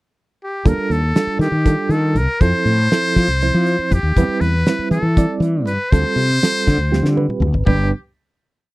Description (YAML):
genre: electric jazz fusion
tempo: 239 BPM (eighths)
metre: 7/8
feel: straight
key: G mixolydian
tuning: A4 = 442 Hz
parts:
  - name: trumpet with metal mute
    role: melody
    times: 0.4-7.9 s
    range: G4 to C5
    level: -21 LUFS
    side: left 1 dB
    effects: none
  - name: reed electric piano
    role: accompaniment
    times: 0.7-7.9 s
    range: F3 to D5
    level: -22 LUFS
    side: right 4 dB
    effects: tremolo
  - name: fretless electric bass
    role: bass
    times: 0.7-7.9 s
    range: G1 to F3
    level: -17 LUFS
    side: equal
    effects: none
  - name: damped 70s drum kit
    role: drums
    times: 0.7-7.8 s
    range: hi-hat, kick drum, snare drum, toms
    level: -17 LUFS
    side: equal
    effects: none
room: little or no reverb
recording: dry, close 1970s-style studio recording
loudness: -14 LUFS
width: side -20 dB against mid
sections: 0.0-0.7 pickup bar; 0.7-7.7 A section; 7.7-8.7 final chord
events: drum fill 6.9-7.7; reed electric piano fill 6.9-7.7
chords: 0.0 N.C.; 0.7 Ebmaj9#11; 2.4 Fmaj7; 4.2 Cmaj7/E; 5.9 G9sus4/D; 7.7 G